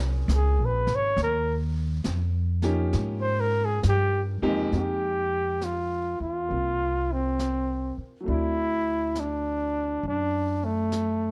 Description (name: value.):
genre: jazz ballad.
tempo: 68 BPM.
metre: 4/4.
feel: swing 66% on 8ths.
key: unclear.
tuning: A4 = 441 Hz.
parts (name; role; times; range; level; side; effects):
clear concert grand piano; accompaniment; 0.0-11.3 s; F2 to Ab4; -35 LUFS; equal; none.
upright bass; bass; 0.0-11.3 s; Ab1 to Ab2; -30 LUFS; equal; none.
jazz brush drum kit; drums; 0.3-11.3 s; brushed snare drum, hi-hat, snare drum; -40 LUFS; equal; none.
breathy flugelhorn; melody; 0.4-11.3 s; A3 to Db5; -29 LUFS; equal; none.
room: light reverb.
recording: dark, warm production.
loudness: -26 LUFS.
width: mono.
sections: 0.0-4.7 A section; 4.7-11.3 B section.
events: flugelhorn solo 0.0-4.7.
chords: 0.0 Bbm9; 1.2 Eb9; 4.7 Fm11; 8.3 D9.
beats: 0.29 | 1.17 2.04 2.93 3.82 | 4.71 5.60 6.49 7.38 | 8.26 9.14 10.02 10.90.